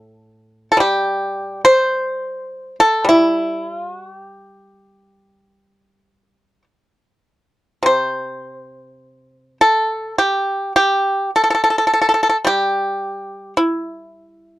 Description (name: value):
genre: chinese traditional, Chinese solo plucked strings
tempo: 48-55 BPM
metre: 4/4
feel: rubato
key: unclear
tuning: A4 = 440 Hz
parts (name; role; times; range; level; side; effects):
- pipa; solo; 0.0-14.6 s; A2 to C5; -15 LUFS; equal; none
room: little or no reverb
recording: dry, close 1970s-style studio recording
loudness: -15 LUFS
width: side -16 dB against mid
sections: 0.0-7.9 A section; 7.9-14.6 B section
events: none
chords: none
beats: 0.79 1.92 | 3.07 4.22 5.41 6.65 | 7.86 9.03 10.19 11.34 | 12.46 13.57